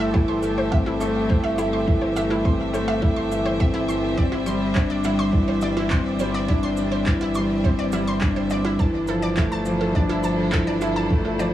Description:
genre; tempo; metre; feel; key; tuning
piano and strings electronica; 104 BPM; 4/4; straight; unclear; A4 = 441 Hz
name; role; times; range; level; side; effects
clear string quartet; sustained chords; 0.0-11.5 s; G3 to E5; -30 LUFS; equal; sidechain pumping
analog pluck; arpeggios; 0.0-11.4 s; E4 to C6; -29 LUFS; right 3 dB; chorus, sidechain pumping, digital delay
dark grand piano; riff; 0.0-11.5 s; E3 to E4; -22 LUFS; left 1 dB; digital delay
round analog bass; bass; 0.0-11.5 s; G1; -31 LUFS; right 1 dB; sidechain pumping
electronic kick drum; drums; 0.1-11.2 s; none; -21 LUFS; equal; small room ambience
electronic shaker and handclaps; drums; 0.4-11.5 s; none; -33 LUFS; right 1 dB; small room ambience
room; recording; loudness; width
light reverb; small room ambience; -19 LUFS; side -12 dB against mid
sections
0.0-11.5 A section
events
none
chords
0.0 Am/G; 4.2 Cadd9/G; 8.8 Dmadd9/G

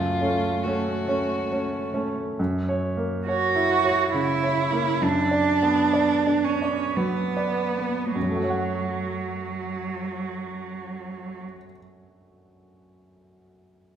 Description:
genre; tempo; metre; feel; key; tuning
classical, slow romantic movement for piano trio; 48-70 BPM; 3/4; rubato; F# minor; A4 = 440 Hz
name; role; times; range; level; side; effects
rich violin; melody; 0.0-1.9 s; E#4 to F#4; -29 LUFS; left 2 dB; none
rich cello; second line; 0.0-11.4 s; F#3 to F#4; -25 LUFS; right 4 dB; none
bright concert grand piano; accompaniment; 0.0-14.0 s; F#2 to F#5; -26 LUFS; right 1 dB; none
room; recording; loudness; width
wet recital hall reverb, RT60 1.5 s; heard from further back in the room; -22 LUFS; side -9 dB against mid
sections
0.0-2.4 A section; 2.4-8.1 B section; 8.1-11.4 C section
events
slowing down 1.1-8.1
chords
0.0 F#m; 2.4 F#7; 5.0 Bm/F#; 8.1 F#m

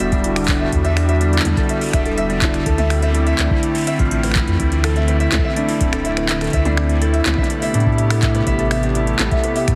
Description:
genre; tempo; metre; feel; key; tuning
IDM; 124 BPM; 4/4; straight; unclear; A4 = 440 Hz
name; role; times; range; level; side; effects
hollow soft pad; sustained chords; 0.0-9.8 s; C3 to G4; -24 LUFS; equal; chorus, shimmer reverb
Celtic harp; arpeggios; 0.0-9.8 s; E3 to E5; -24 LUFS; equal; tape echo, shimmer reverb
warm sub bass; bass; 0.0-9.8 s; D1 to A2; -21 LUFS; equal; none
electro analog drum machine; drums; 0.0-9.8 s; finger snaps, handclaps, hi-hat, toms; -26 LUFS; equal; overdrive, digital delay
bubbling stepped-filter texture; texture; 0.0-9.8 s; G3; -33 LUFS; equal; chorus, built-in reverb, shimmer reverb
electronic kick drum; drums; 0.1-9.8 s; none; -23 LUFS; equal; overdrive
room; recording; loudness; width
moderate digital room reverb, RT60 1.0 s; heavily compressed radio sound; -17 LUFS; mono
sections
0.0-9.8 A section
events
none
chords
0.0 Em9; 2.7 D7sus2; 7.5 Am9

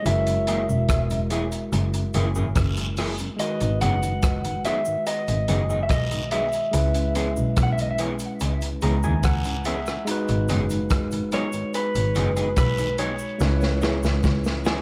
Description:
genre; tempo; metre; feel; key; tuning
lovers rock reggae; 72 BPM; 4/4; straight; C# dorian; A4 = 440 Hz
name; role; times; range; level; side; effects
electric guitar through a small old amp; melody; 0.0-14.8 s; B4 to F#5; -30 LUFS; equal; tape echo
overdriven tine electric piano; accompaniment; 0.0-14.8 s; D#3 to A#5; -32 LUFS; equal; none
clear double bass; bass; 0.1-14.8 s; E1 to D#2; -27 LUFS; equal; none
crunchy breakbeat drum kit; drums; 0.1-14.8 s; hi-hat, kick drum, rim click, snare drum; -29 LUFS; equal; none
cabasa and guiro; percussion; 0.1-14.8 s; none; -42 LUFS; equal; tape echo
mellow tonewheel organ; accompaniment; 0.3-14.8 s; F#2 to C#4; -36 LUFS; equal; none
electric guitar through a small old amp; stabs; 0.5-14.8 s; F#3 to G#4; -35 LUFS; equal; subtle chorus, tape echo
room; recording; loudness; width
light reverb, studio reverb; none; -23 LUFS; mono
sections
0.0-14.8 A section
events
tine electric piano fill 8.4-10.1; drum fill 13.4-14.8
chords
0.1 F#9; 3.4 G#m7; 6.7 C#m7; 10.1 G#m7; 13.4 C#m7

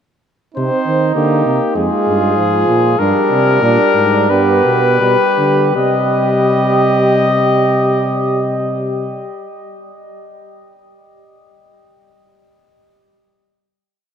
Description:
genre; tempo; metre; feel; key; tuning
classical, imitative canzona for brass ensemble; 76-102 BPM; 4/4; straight; C minor; A4 = 439 Hz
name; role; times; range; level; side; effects
mellow flugelhorn; second line; 0.5-9.3 s; D4 to G4; -18 LUFS; right 4 dB; none
warm trumpet; melody; 0.6-9.3 s; G4 to Eb5; -16 LUFS; left 5 dB; none
warm euphonium; accompaniment; 0.6-9.3 s; F3 to C4; -19 LUFS; right 2 dB; none
warm bass trombone; bass; 0.6-9.3 s; F2 to Eb3; -18 LUFS; equal; none
room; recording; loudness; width
wet cathedral reverb, RT60 6.1 s; in a vast, echoing space; -11 LUFS; side -8 dB against mid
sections
0.6-5.8 exposition; 5.8-8.9 final chord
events
slowing down 0.6-7.3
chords
0.6 Cm; 1.8 Fmadd9; 3.0 Gsus4; 4.3 G; 5.8 Cm

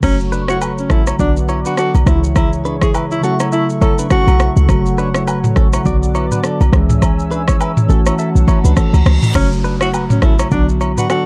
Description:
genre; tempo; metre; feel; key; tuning
afrobeats; 103 BPM; 4/4; swing 58% on 16ths; unclear; A4 = 440 Hz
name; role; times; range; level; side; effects
breathy alto saxophone; melody; 0.0-4.5, 9.4-11.2 s; C#4 to A4; -22 LUFS; equal; digital delay
mellow tine electric piano; accompaniment; 0.0-11.3 s; C#3 to G#4; -21 LUFS; equal; none
hollow soft pad; sustained chords; 0.0-9.3 s; G#4 to E6; -30 LUFS; equal; chorus
short 808-style bass; bass; 0.0-11.0 s; F#1 to C#2; -17 LUFS; equal; none
afro-pop drum kit; drums; 0.0-11.3 s; crash cymbal, kick drum, rim click, shaker, toms; -18 LUFS; equal; vintage 12-bit sampler grit
agogo bells and woodblock; percussion; 0.0-11.3 s; none; -30 LUFS; equal; none
direct-recorded clean electric guitar; riff; 0.3-11.3 s; C#4 to E5; -27 LUFS; equal; digital delay
reverse cymbal and downlifter; sound effects; 8.7-11.3 s; none; -32 LUFS; equal; none
room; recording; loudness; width
little or no reverb; dark, warm production; -14 LUFS; mono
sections
0.0-9.3 A section; 9.3-11.3 B section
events
reverse cymbal 8.7-9.3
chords
0.0 F#m; 1.2 Bm; 2.1 C#m; 3.2 A6; 4.7 F#m; 5.9 Bm; 6.7 C#m; 7.9 A6; 9.3 F#m; 10.5 Bm

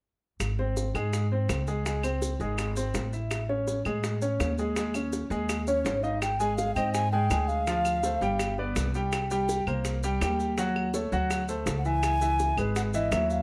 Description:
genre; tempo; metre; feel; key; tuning
Afro-Cuban jazz; 165 BPM; 4/4; straight; Ab major; A4 = 440 Hz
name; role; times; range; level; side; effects
upright bass; bass; 0.4-13.4 s; G1 to A2; -33 LUFS; equal; none
bongos; percussion; 0.4-13.4 s; none; -39 LUFS; equal; none
claves; percussion; 0.4-13.3 s; none; -40 LUFS; equal; none
maracas; percussion; 0.4-13.4 s; none; -45 LUFS; equal; none
clear baby grand piano; accompaniment; 0.6-13.4 s; E3 to Ab5; -33 LUFS; equal; none
alto ocarina; melody; 5.7-8.6, 11.8-13.4 s; Db5 to Ab5; -30 LUFS; equal; none
room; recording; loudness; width
light reverb; none; -28 LUFS; mono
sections
0.4-6.2 A section; 6.2-13.4 B section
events
none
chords
0.4 Ab; 1.9 Db5; 3.3 Amaj7; 4.8 Eb7sus4; 6.2 Abmaj7; 7.7 Dm7; 8.4 G; 9.1 Cm7; 10.6 Ebm7b5; 11.3 D9; 12.0 Dbm11

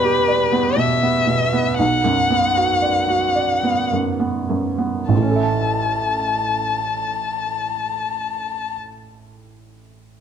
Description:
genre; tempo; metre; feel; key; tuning
neoclassical piano and strings; 50-61 BPM; 3/4; rubato; A major; A4 = 440 Hz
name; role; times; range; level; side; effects
warm violin; melody; 0.0-8.8 s; B4 to A5; -20 LUFS; left 3 dB; none
felt-muted upright piano; accompaniment; 0.0-10.2 s; A1 to A5; -20 LUFS; right 3 dB; none
room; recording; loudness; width
moderate large studio reverb, RT60 1.3 s; none; -17 LUFS; side -8 dB against mid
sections
0.0-5.1 A section; 5.1-8.6 B section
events
slowing down 0.0-5.1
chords
0.0 Em7; 1.8 Bm; 5.1 A

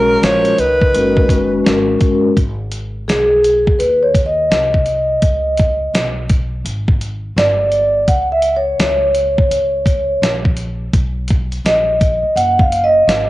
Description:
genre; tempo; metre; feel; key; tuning
hip hop, jazz-hop; 84 BPM; 4/4; swing 64% on 16ths; G# dorian; A4 = 440 Hz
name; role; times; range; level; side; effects
clear alto saxophone; melody; 0.0-1.7 s; A#4 to C#5; -15 LUFS; equal; none
breathy tenor saxophone; second line; 0.0-1.7 s; C#3 to E#3; -23 LUFS; right 3 dB; cassette tape
vibraphone with soft mallets; accompaniment; 0.0-13.3 s; G#3 to F#5; -14 LUFS; equal; cassette tape
upright bass; bass; 0.0-13.3 s; F#1 to D#2; -23 LUFS; equal; none
dusty soul sampler-style drum kit; drums; 0.2-13.3 s; hi-hat, kick drum, snare drum; -16 LUFS; equal; cassette tape
room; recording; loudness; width
moderate spring reverb, RT60 1.8 s, small room ambience; home recording on cassette; -12 LUFS; side -17 dB against mid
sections
0.0-2.4 A section; 2.4-13.3 B section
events
vibraphone solo 2.4-13.3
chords
0.0 Bmaj9; 1.7 G#sus2; 2.4 G#m; 5.2 C#sus2; 7.4 G5; 8.1 A#m; 10.9 Bmaj7

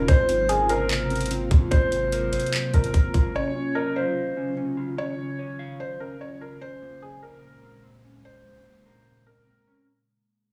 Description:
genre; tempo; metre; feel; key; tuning
hip hop, atmospheric cloud-rap; 147 BPM; 4/4; half-time; unclear; A4 = 439 Hz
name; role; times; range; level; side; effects
felt-muted upright piano; melody; 0.0-9.8 s; Ab4 to Db5; -29 LUFS; equal; slapback echo
ethereal airy pad; sustained chords; 0.0-9.8 s; Bb2 to F4; -36 LUFS; equal; ensemble chorus, built-in reverb, sidechain pumping
mellow electric guitar; arpeggios; 0.0-9.9 s; Ab3 to F5; -34 LUFS; equal; slapback echo
warm 808-style bass; bass; 0.0-3.3 s; Ab1; -27 LUFS; equal; none
trap drum kit; drums; 0.1-3.2 s; handclaps, hi-hat, kick drum; -25 LUFS; equal; none
room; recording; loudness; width
light reverb, digital ambience; heavily compressed radio sound, small room ambience; -24 LUFS; mono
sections
0.0-9.9 A section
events
fade-out 0.0-9.9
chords
0.1 Ab13; 3.3 Ebm9; 6.6 Bbm9

